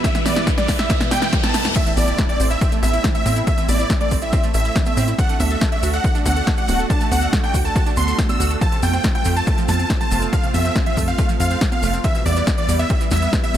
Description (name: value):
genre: uplifting trance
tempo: 140 BPM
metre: 4/4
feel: straight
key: A minor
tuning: A4 = 440 Hz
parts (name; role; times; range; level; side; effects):
- supersaw chords; melody; 0.0-13.6 s; D5 to E6; -24 LUFS; right 1 dB; sidechain pumping, digital delay
- warm baby grand piano; second line; 0.0-13.6 s; D5 to E6; -31 LUFS; left 1 dB; none
- analog string pad; sustained chords; 0.0-13.6 s; E2 to B4; -28 LUFS; right 1 dB; ensemble chorus, sidechain pumping
- analog pluck; arpeggios; 0.0-13.6 s; E2 to A4; -28 LUFS; right 5 dB; chorus, sidechain pumping, digital delay
- big-room dance drum kit; drums; 0.0-13.6 s; congas, crash cymbal, hi-hat, snare drum; -25 LUFS; right 2 dB; overdrive
- electronic kick drum; drums; 0.0-13.4 s; none; -20 LUFS; equal; overdrive
- maracas; percussion; 0.0-13.6 s; none; -34 LUFS; left 4 dB; none
- riser, reverse cymbal and impact; sound effects; 0.0-3.5 s; none; -28 LUFS; left 1 dB; none
- tight sequencer bass; bass; 2.0-13.6 s; D1 to A2; -20 LUFS; equal; sidechain pumping
room: little or no reverb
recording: none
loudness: -16 LUFS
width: side -11 dB against mid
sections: 0.0-1.8 A section; 1.8-13.6 B section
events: build-up 0.0-1.8; drum fill 0.0-1.8; riser 0.0-1.8; filter sweep on synth pluck 0.0-1.8; reverse cymbal 0.9-1.8; drop 1.8-13.6; impact 1.8-3.5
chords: 0.0 Em; 1.8 Am; 5.2 D; 8.6 F; 12.0 Em